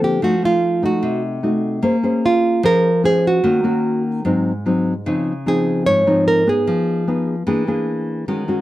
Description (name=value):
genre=bossa nova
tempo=149 BPM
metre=4/4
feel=straight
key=Bb minor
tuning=A4 = 436 Hz
part: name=nylon-string guitar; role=melody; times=0.0-7.2 s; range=F4 to Db5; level=-17 LUFS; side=right 2 dB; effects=none
part: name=nylon-string guitar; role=accompaniment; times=0.0-8.6 s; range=Ab2 to C5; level=-18 LUFS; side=left 1 dB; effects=none
room=light reverb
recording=close, detailed microphones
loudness=-15 LUFS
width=side -15 dB against mid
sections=0.0-1.8 A section; 1.8-8.6 B section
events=none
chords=0.2 F7b9; 1.8 Bbm9; 3.4 Ebm7; 4.2 Ab7; 5.1 Dbmaj9; 6.7 Fm7b5; 7.5 E7#11